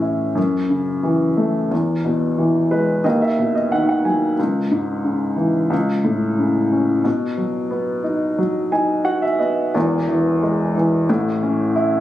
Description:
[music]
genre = folk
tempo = 90 BPM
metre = 4/4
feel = straight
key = E major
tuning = A4 = 439 Hz
[part]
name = warm upright piano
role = solo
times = 0.0-12.0 s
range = E1 to G#5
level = -17 LUFS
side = equal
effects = none
[sound]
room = light reverb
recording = recorded on a phone in the room, studio reverb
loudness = -17 LUFS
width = side -13 dB against mid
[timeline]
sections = 0.0-9.8 A section; 9.8-12.0 B section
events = none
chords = 0.4 F#m7; 1.7 E; 3.0 B/D#; 4.4 C#m; 5.7 A/C#; 7.0 B; 9.8 E; 11.1 A

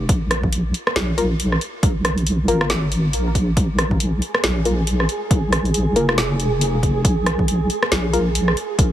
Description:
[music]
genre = deep dubstep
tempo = 138 BPM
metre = 4/4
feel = swing 58% on 16ths, half-time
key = unclear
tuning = A4 = 441 Hz
[part]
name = deep soft wobble bass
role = bass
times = 0.0-8.9 s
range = F1 to Bb1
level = -20 LUFS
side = equal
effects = chorus
[part]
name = deep house drum kit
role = drums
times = 0.1-8.9 s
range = hi-hat, rim click, snare drum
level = -23 LUFS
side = equal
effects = none
[part]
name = electronic kick drum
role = drums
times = 0.1-8.9 s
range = none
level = -19 LUFS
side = equal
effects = none
[part]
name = filtered dub chord stab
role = stabs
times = 1.2-8.2 s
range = Bb3 to Bb4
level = -26 LUFS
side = left 2 dB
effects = chorus, dub echo
[part]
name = flickering grainy texture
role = texture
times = 4.1-8.9 s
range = Ab4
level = -26 LUFS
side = right 3 dB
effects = built-in reverb
[sound]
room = little or no reverb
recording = heavily compressed radio sound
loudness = -17 LUFS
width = side -12 dB against mid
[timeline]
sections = 0.0-8.9 A section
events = none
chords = 0.0 Bb5

